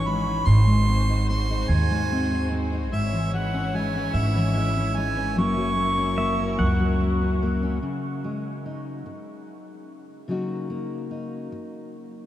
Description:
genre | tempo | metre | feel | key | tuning
acoustic folk duo or small band | 49 BPM (dotted quarters) | 6/8 | straight | C# dorian | A4 = 440 Hz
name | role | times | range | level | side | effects
warm harmonica | melody | 0.0-7.0 s | E5 to C#6 | -28 LUFS | right 3 dB | none
fingerpicked steel-string acoustic guitar | accompaniment | 0.0-12.3 s | F#2 to F#4 | -26 LUFS | left 2 dB | none
clear studio string section | sustained chords | 0.0-7.8 s | E3 to C#5 | -35 LUFS | equal | none
upright bass | bass | 0.0-7.8 s | F#1 to D#2 | -24 LUFS | right 1 dB | none
pedal steel guitar | second line | 6.2-7.8 s | E5 to F#5 | -36 LUFS | right 2 dB | none
room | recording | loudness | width
moderate huge ambient reverb, RT60 8.1 s | in a vast, echoing space | -21 LUFS | side -12 dB against mid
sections
0.0-7.8 A section; 7.8-12.3 B section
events
none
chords
0.5 G#7; 2.9 C#m/G#; 5.4 F#7; 7.8 C#madd9; 10.3 F#6/C#

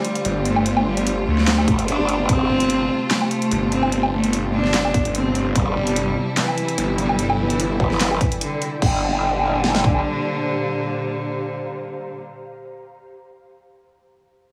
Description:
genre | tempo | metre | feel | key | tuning
heavy wobble dubstep | 147 BPM | 4/4 | swing 53% on 16ths, half-time | G dorian | A4 = 440 Hz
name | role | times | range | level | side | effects
rich cello | melody | 0.0-12.2 s | D3 to D4 | -26 LUFS | equal | dub echo
warm studio string section | sustained chords | 0.0-12.2 s | Bb2 to F4 | -31 LUFS | equal | sidechain pumping
dubstep drum kit | drums | 0.0-8.9 s | crash cymbal, handclaps, hi-hat, snare drum, woodblock | -26 LUFS | equal | overdrive
ethereal airy pad | texture | 0.0-12.4 s | E4 to Bb5 | -34 LUFS | equal | ensemble chorus, built-in reverb, sidechain pumping
snarling distorted saw bass | bass | 0.2-7.8 s | G1 to D2 | -25 LUFS | equal | distortion, overdrive
growl bass | bass | 1.7-2.5, 5.6-10.0 s | G1 | -24 LUFS | equal | chorus, overdrive
dubstep drum kit | drums | 1.7-2.4, 4.9-9.9 s | kick drum, snare drum | -24 LUFS | equal | none
room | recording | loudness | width
light reverb | small room ambience | -20 LUFS | mono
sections
0.0-8.8 A section; 8.8-12.1 B section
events
drop 0.0-8.8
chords
0.0 Dm/G; 2.3 F/G; 5.6 C/G; 8.8 Gm

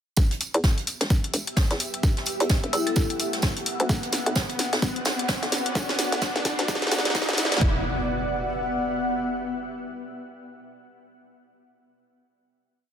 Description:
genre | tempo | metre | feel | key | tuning
bass house | 129 BPM | 4/4 | swing 59% on 16ths | E minor | A4 = 440 Hz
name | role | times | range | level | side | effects
hollow knocking FM bass | bass | 0.2-7.8 s | E1 to E2 | -27 LUFS | equal | overdrive, sidechain pumping, high-pass filter
electronic kick drum | drums | 0.2-7.7 s | none | -23 LUFS | equal | studio reverb
garage drum kit | drums | 0.2-7.7 s | hi-hat, snare drum | -28 LUFS | left 1 dB | high-pass filter on snare, studio reverb, high-pass filter on hats
jazz brush drum kit | drums | 0.2-7.6 s | hi-hat, snare drum, tambourine | -32 LUFS | right 2 dB | sidechain pumping on hats, high-pass filter on hats, studio reverb, high-pass filter on snare, sidechain pumping on perc, high-pass filter on perc, high-pass filter on room
riser and impact | sound effects | 1.8-9.5 s | none | -33 LUFS | equal | none
granular cloud pad | texture | 1.5-9.4 s | B3 to F#5 | -29 LUFS | equal | built-in reverb, sidechain pumping
marimba with medium hard mallets | melody | 2.7-3.5 s | E4 to A4 | -30 LUFS | left 4 dB | tape echo
room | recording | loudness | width
moderate lush hall reverb, RT60 1.8 s, small room ambience | high-pass filter | -22 LUFS | side -8 dB against mid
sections
0.2-7.6 build; 7.6-9.5 final chord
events
build-up 0.2-7.6; drum fill 0.2-7.6; filter sweep 0.2-7.6; riser 1.8-7.6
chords
0.2 Emadd9; 3.9 Bm; 7.6 Emadd9

